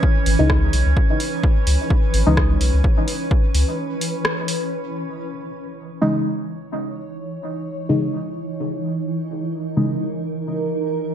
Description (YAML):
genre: dub techno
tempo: 128 BPM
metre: 4/4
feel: swing 54% on 16ths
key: C# dorian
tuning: A4 = 440 Hz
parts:
  - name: granular cloud pad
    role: sustained chords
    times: 0.0-11.1 s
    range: E3 to C#5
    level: -26 LUFS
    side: right 1 dB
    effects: built-in reverb, sidechain pumping
  - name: electronic kick drum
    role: drums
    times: 0.0-3.4 s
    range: none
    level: -18 LUFS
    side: equal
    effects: none
  - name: drifting glass-harmonics texture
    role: texture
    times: 0.0-4.7 s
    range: C#5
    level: -32 LUFS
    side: right 11 dB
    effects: chorus, built-in reverb, sidechain pumping
  - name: soft dub sub bass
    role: bass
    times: 0.3-3.6 s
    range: G#1 to C#2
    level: -17 LUFS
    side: equal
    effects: sidechain pumping
  - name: punchy analog drum machine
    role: drums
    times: 0.3-4.6 s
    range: hi-hat, rim click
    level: -26 LUFS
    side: equal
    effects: none
  - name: deep mellow chord stab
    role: stabs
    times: 0.4-2.5, 6.0-10.0 s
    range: C#3 to D#4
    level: -23 LUFS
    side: equal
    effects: chorus, phaser, cassette tape, sidechain pumping, dub echo
room: light reverb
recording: dark, warm production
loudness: -18 LUFS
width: side -10 dB against mid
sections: 0.0-4.7 A section; 4.7-11.1 B section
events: break 3.8-4.7; band accent 4.2; filter sweep on ambient pad 4.7-11.1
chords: 0.0 C#madd9